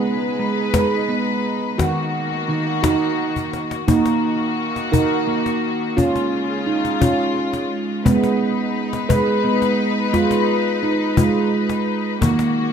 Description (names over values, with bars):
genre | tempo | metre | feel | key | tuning
world meditative, meditative tuned percussion | 58 BPM (dotted quarters) | 6/8 | straight | Eb minor | A4 = 441 Hz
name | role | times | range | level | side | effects
warm studio string section | sustained chords | 0.0-12.7 s | Db3 to Cb5 | -23 LUFS | left 4 dB | none
handpan | arpeggios | 0.0-12.7 s | Eb3 to Cb5 | -19 LUFS | right 3 dB | none
cajon | percussion | 0.7-12.6 s | none | -21 LUFS | left 4 dB | none
room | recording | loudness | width
wet echo chamber reverb, RT60 1.4 s, studio ambience | none | -17 LUFS | side -7 dB against mid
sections
0.0-3.9 A section; 3.9-12.7 B section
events
drum fill 3.4-3.9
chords
0.0 Abm; 1.8 Ebm; 6.0 Db; 8.1 Abm; 12.2 Ebm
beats
0.74 | 1.79 2.84 | 3.88 4.93 | 5.97 7.02 | 8.06 9.10 | 10.14 11.18 | 12.22